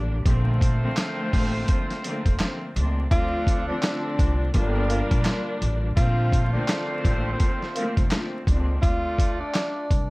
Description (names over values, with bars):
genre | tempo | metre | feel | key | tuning
hip hop, boom-bap hip-hop | 84 BPM | 4/4 | swing 60% on 16ths | Bb major | A4 = 439 Hz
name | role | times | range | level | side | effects
warm studio string section | accompaniment | 0.0-8.8 s | D3 to D4 | -29 LUFS | left 1 dB | cassette tape, high-pass filter, low-pass filter
upright bass | bass | 0.0-10.1 s | F1 to D2 | -25 LUFS | equal | none
warm horn section | stabs | 0.3-9.9 s | F3 to D5 | -34 LUFS | right 2 dB | high-pass filter, low-pass filter, digital delay
dusty soul sampler-style drum kit | drums | 0.3-10.1 s | handclaps, hi-hat, kick drum, snare drum | -23 LUFS | equal | none
breathy tenor saxophone | melody | 3.1-10.1 s | Bb3 to F4 | -30 LUFS | equal | high-pass filter, low-pass filter, digital delay
room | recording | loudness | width
little or no reverb | vinyl crackle | -21 LUFS | side -23 dB against mid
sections
0.0-10.1 A section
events
break 0.0-3.1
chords
0.3 Bbmaj9; 3.1 Dm7; 4.5 Gm7; 6.0 Bbmaj9; 8.8 Dm7